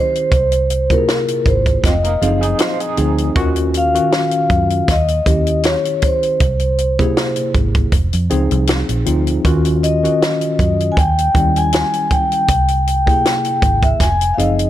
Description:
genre	lush 1970s-style soul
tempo	79 BPM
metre	4/4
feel	swing 54% on 16ths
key	unclear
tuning	A4 = 440 Hz
part	vibraphone with soft mallets	melody	0.0-14.7 s	Bb4 to Ab5	-17 LUFS	left 1 dB	none
part	tine electric piano	accompaniment	0.0-14.7 s	C3 to Ab4	-20 LUFS	left 1 dB	overdrive, fast stereo tremolo
part	compact cocktail drum kit	drums	0.2-14.7 s	hi-hat, kick drum, snare drum	-18 LUFS	right 1 dB	none
part	vintage muted fingered electric bass	bass	0.3-14.7 s	F1 to Gb2	-18 LUFS	right 1 dB	none
part	electric guitar through a small old amp	riff	1.8-3.3 s	F3 to C5	-24 LUFS	right 6 dB	tremolo
room	small room ambience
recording	none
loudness	-13 LUFS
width	side -12 dB against mid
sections	0.0-14.7 A section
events	none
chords	0.3 C7b13; 1.8 Fm7; 3.4 Ebm9; 4.9 Eb7b9; 6.4 C7b13; 7.9 Fm7; 9.4 Ebm9; 11.0 Eb7b9; 12.5 C7b13; 14.0 Fm7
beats	| 0.32 1.08 1.84 2.60 | 3.36 4.12 4.88 5.64 | 6.41 7.17 7.92 8.68 | 9.44 10.20 10.96 11.72 | 12.48 13.24 14.00

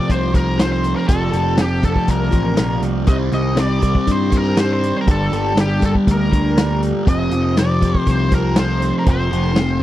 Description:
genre	psychedelic rock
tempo	120 BPM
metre	4/4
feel	straight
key	unclear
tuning	A4 = 442 Hz
part	octave-fuzz lead guitar	melody	0.0-9.8 s	G4 to Eb5	-23 LUFS	equal	wah, distortion, tape echo
part	combo organ	sustained chords	0.0-9.8 s	Eb3 to D5	-27 LUFS	right 2 dB	wide subtle chorus
part	fuzz guitar	riff	0.0-9.8 s	F2 to C4	-20 LUFS	left 1 dB	distortion, phaser
part	picked electric bass	bass	0.1-9.8 s	F1 to G2	-20 LUFS	equal	none
part	vintage drum kit	drums	0.1-9.7 s	hi-hat, kick drum, snare drum	-17 LUFS	equal	none
room	little or no reverb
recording	dry, close 1970s-style studio recording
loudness	-14 LUFS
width	side -14 dB against mid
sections	0.0-9.8 A section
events	none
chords	0.0 Fsus4; 3.1 Cm; 5.1 Gm; 7.1 Fsus4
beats	0.09 0.59 | 1.09 1.58 2.08 2.58 | 3.08 3.57 4.07 4.57 | 5.07 5.57 6.07 6.57 | 7.06 7.56 8.06 8.56 | 9.06 9.56

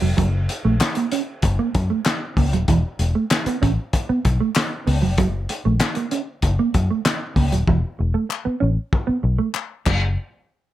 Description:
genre	funk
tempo	96 BPM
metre	4/4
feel	straight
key	unclear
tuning	A4 = 442 Hz
part	mellow electric guitar	riff	0.0-10.0 s	E3 to C#4	-22 LUFS	right 5 dB	analog chorus
part	vintage muted fingered electric bass	bass	0.0-10.2 s	D#1 to F#2	-20 LUFS	left 1 dB	none
part	cloth-damped thuddy drum kit	drums	0.2-10.0 s	crash cymbal, handclaps, hi-hat, kick drum, snare drum	-22 LUFS	left 1 dB	none
part	group handclap	percussion	0.8-10.2 s	none	-28 LUFS	left 9 dB	none
room	light reverb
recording	none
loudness	-18 LUFS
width	side -14 dB against mid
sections	0.2-10.2 A section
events	drum fill 7.7-10.2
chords	0.2 F#; 2.7 Esus4; 5.2 F#; 7.7 Esus4; 9.9 N.C.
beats	| 0.18 0.81 1.43 2.06 | 2.68 3.31 3.93 4.55 | 5.18 5.80 6.43 7.05 | 7.68 8.30 8.93 9.55

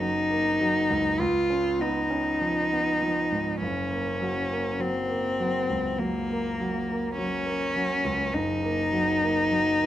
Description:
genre	classical, romantic duo for cello and grand piano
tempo	50 BPM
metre	4/4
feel	rubato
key	unclear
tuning	A4 = 440 Hz
part	rich cello	melody	0.0-9.9 s	Bb3 to F4	-25 LUFS	left 1 dB	none
part	clear grand piano	accompaniment	0.0-9.9 s	Gb1 to Db4	-29 LUFS	right 2 dB	none
room	light reverb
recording	close, detailed microphones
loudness	-24 LUFS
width	side -12 dB against mid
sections	0.0-9.9 A section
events	none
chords	0.0 Gb; 1.2 Db7; 3.6 Gb; 8.3 Ebm/Gb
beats	0.00 1.20 2.42 | 3.62 4.81 5.99 7.17 | 8.33 9.51

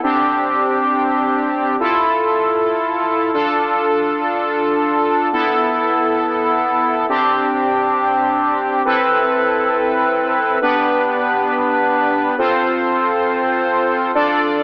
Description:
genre	pop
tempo	free time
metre	none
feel	none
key	A minor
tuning	A4 = 440 Hz
part	analog synth brass	solo	0.0-14.6 s	B3 to D5	-17 LUFS	equal	chorus, slapback echo
room	moderate lush hall reverb, RT60 2.6 s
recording	AM radio sound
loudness	-17 LUFS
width	mono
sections	0.0-8.9 A section; 8.9-14.6 B section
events	none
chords	0.0 Gsus4; 1.8 Fmaj7; 3.3 Dm; 5.3 Esus4; 7.1 Gsus4; 8.9 Amadd9; 10.6 G; 12.4 F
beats	free time

